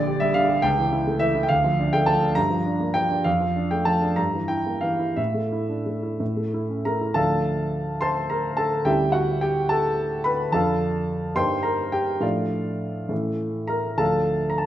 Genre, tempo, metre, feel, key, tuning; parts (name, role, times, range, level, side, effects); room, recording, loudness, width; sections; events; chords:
classical, romantic character piece for solo piano; 57-73 BPM (dotted quarters); 6/8; rubato; D minor; A4 = 440 Hz
warm grand piano; solo; 0.0-14.7 s; Bb1 to C6; -21 LUFS; equal
wet recital hall reverb, RT60 1.4 s; -21 LUFS; side -12 dB against mid
0.0-7.2 A section; 7.2-14.7 B section
0.0 Gm/Bb; 0.6 A7/C#; 1.5 Dm; 2.4 Gm7; 3.3 Dm/F; 4.2 Edim/G; 5.2 Asus4; 6.2 A; 7.2 Dm; 8.9 C#dim/D; 10.5 Dm/F; 11.4 Eb/G; 12.2 Dm/A; 13.1 A; 14.0 Dm